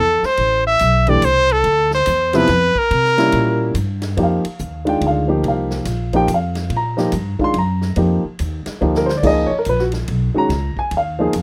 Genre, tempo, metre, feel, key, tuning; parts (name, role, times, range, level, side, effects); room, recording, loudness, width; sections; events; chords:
modal jazz; 142 BPM; 3/4; swing 65% on 8ths; F dorian from 4.2 s; A4 = 440 Hz
breathy trumpet; melody; 0.0-3.8 s; A4 to E5; -17 LUFS; equal
upright bass; bass; 0.0-11.4 s; A1 to C3; -23 LUFS; equal
swinging big-band drum kit; drums; 0.2-11.4 s; crash cymbal, hi-hat, kick drum, ride cymbal, snare drum; -33 LUFS; equal
dark upright piano; accompaniment; 1.1-11.4 s; C3 to C6; -20 LUFS; equal
light reverb; rough home demo mix; -17 LUFS; mono
0.0-4.2 A section; 4.2-11.4 B section
drum fill 8.8-9.2
0.0 Dm9; 2.9 C7b9; 4.2 F9sus4; 9.2 Db7sus2